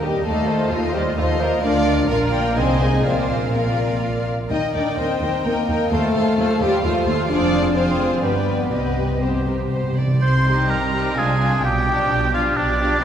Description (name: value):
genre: quick classical-period movement for symphony orchestra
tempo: 128 BPM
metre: 3/4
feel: rubato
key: C minor from 7.3 s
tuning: A4 = 440 Hz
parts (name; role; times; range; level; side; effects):
- rich chamber violin section; melody; 0.0-13.0 s; F4 to C6; -28 LUFS; left 1 dB; none
- warm chamber violin section; second line; 0.0-13.0 s; D4 to Ab5; -26 LUFS; left 2 dB; none
- rich chamber viola section; accompaniment; 0.0-13.0 s; F3 to C5; -28 LUFS; right 2 dB; none
- mellow French horn section; sustained chords; 0.0-9.7 s; F3 to Eb4; -22 LUFS; left 2 dB; none
- dark chamber cello section; bass; 0.0-13.0 s; D2 to C3; -25 LUFS; right 1 dB; none
- rich studio double bass section; bass; 0.0-13.0 s; F1 to Eb2; -26 LUFS; right 2 dB; none
- timpani; percussion; 8.7-10.1 s; C3; -24 LUFS; equal; none
- warm oboe; second line; 10.2-13.0 s; D4 to C5; -21 LUFS; right 2 dB; none
room: wet church reverb, RT60 3.8 s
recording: recorded in a church or concert hall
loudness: -17 LUFS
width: side -9 dB against mid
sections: 0.0-10.2 A section; 10.2-13.0 B section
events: timpani fill 8.7-10.2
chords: 0.3 F7/Eb; 1.6 Bb/D; 2.6 Ab/C; 3.1 Bb; 4.5 Eb; 5.9 F7/Eb; 7.3 Fm; 8.2 G; 8.7 Cm; 11.2 Dm7b5/C; 11.6 G7/B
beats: | 0.25 0.71 1.18 | 1.64 2.10 2.57 | 3.06 3.54 4.02 | 4.50 4.97 5.44 | 5.91 6.37 6.83 | 7.29 7.75 8.23 | 8.72 9.22 9.72 | 10.22 10.70 11.17 | 11.64 12.10 12.57 | 13.03